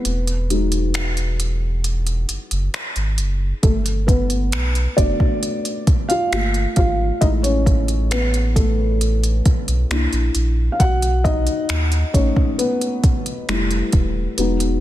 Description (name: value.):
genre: contemporary R&B.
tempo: 67 BPM.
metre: 4/4.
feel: straight.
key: unclear.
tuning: A4 = 440 Hz.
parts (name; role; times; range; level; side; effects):
felt-muted upright piano; accompaniment; 0.0-14.8 s; F#3 to F#5; -22 LUFS; left 1 dB; none.
warm sub bass; bass; 0.1-14.8 s; D#1 to D#2; -20 LUFS; equal; none.
smooth R&B drum kit; drums; 0.1-14.8 s; finger snaps, hi-hat, kick drum; -20 LUFS; equal; soft clipping on snare.
room: little or no reverb.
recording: dense, heavily limited modern master.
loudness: -16 LUFS.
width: side -14 dB against mid.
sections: 0.0-14.8 A section.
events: break 0.0-3.6; felt piano solo 0.0-14.8; kick muted 14.4-14.8.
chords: 0.1 Emaj7; 3.6 Gmaj7; 6.3 Gm7; 7.2 Amaj9; 9.9 C9; 10.8 B7; 13.5 Fmaj7.